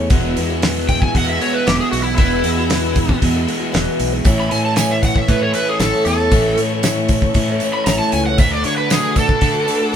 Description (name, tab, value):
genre	folk rock and heartland rock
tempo	116 BPM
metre	4/4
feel	straight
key	E mixolydian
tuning	A4 = 440 Hz
part	picked twelve-string acoustic guitar	accompaniment	0.0-10.0 s	E2 to F#4	-24 LUFS	left 4 dB	none
part	warm studio string section	sustained chords	0.0-10.0 s	G#4 to E6	-29 LUFS	left 2 dB	none
part	crunchy overdriven guitar	riff	0.0-10.0 s	E2 to F#4	-22 LUFS	right 1 dB	none
part	fingered electric bass	bass	0.0-9.7 s	E1 to D3	-21 LUFS	equal	none
part	damped 70s drum kit	drums	0.1-9.8 s	hi-hat, kick drum, snare drum	-18 LUFS	equal	none
part	overdriven slide guitar	melody	0.9-10.0 s	E4 to B5	-19 LUFS	right 1 dB	none
part	tambourine	percussion	4.3-9.8 s	none	-32 LUFS	right 6 dB	none
room	moderate stone room reverb, RT60 1.3 s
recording	band playing live in one room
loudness	-14 LUFS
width	side -8 dB against mid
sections	0.0-10.0 A section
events	electric slide guitar solo 0.0-10.0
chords	0.1 Eadd9; 4.3 A; 8.4 D6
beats	| 0.11 0.63 1.15 1.67 | 2.19 2.71 3.23 3.74 | 4.26 4.78 5.30 5.81 | 6.33 6.85 7.37 7.88 | 8.40 8.91 9.43 9.95